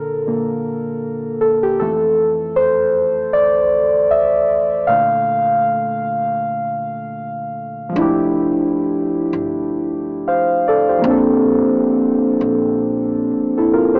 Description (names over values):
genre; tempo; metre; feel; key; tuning
hip hop; 78 BPM; 4/4; swing 57% on 16ths; F major; A4 = 438 Hz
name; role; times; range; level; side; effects
muted felt-like synth keys; accompaniment; 0.0-14.0 s; F2 to F5; -17 LUFS; equal; chorus, low-pass filter
upright bass; bass; 8.0-13.3 s; F1 to Bb1; -35 LUFS; equal; none
room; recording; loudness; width
wet studio reverb, RT60 0.5 s; small speaker sound; -17 LUFS; mono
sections
0.0-8.0 A section; 8.0-14.0 B section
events
synth keys solo 0.0-8.0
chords
0.0 Bbmaj7; 1.8 F6; 4.9 Bbmaj7; 8.0 Fmaj13; 11.0 Bbmaj9